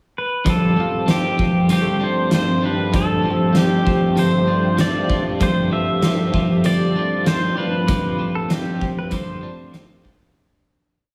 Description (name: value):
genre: dream pop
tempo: 97 BPM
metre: 4/4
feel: straight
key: unclear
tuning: A4 = 440 Hz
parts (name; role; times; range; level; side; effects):
- pedal steel guitar; melody; 0.2-9.7 s; G4 to E5; -26 LUFS; equal; tape echo
- clean electric guitar; accompaniment; 0.4-10.4 s; G2 to G4; -28 LUFS; equal; tremolo, lush chorus
- lush unison pad; sustained chords; 0.5-10.3 s; G2 to G4; -25 LUFS; equal; chorus, phaser
- clean electric guitar; arpeggios; 0.5-10.9 s; F3 to D4; -25 LUFS; equal; lush chorus, tape echo
- oversized low-tuned drum kit; drums; 0.5-10.2 s; hi-hat, kick drum, snare drum; -25 LUFS; equal; none
- kora; texture; 0.8-9.0 s; G3 to F4; -36 LUFS; equal; none
room: moderate plate reverb, RT60 2.7 s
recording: none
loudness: -19 LUFS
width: mono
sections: 0.0-0.5 pickup bar; 0.5-10.4 verse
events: fade-out 7.9-10.4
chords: 0.5 G7sus4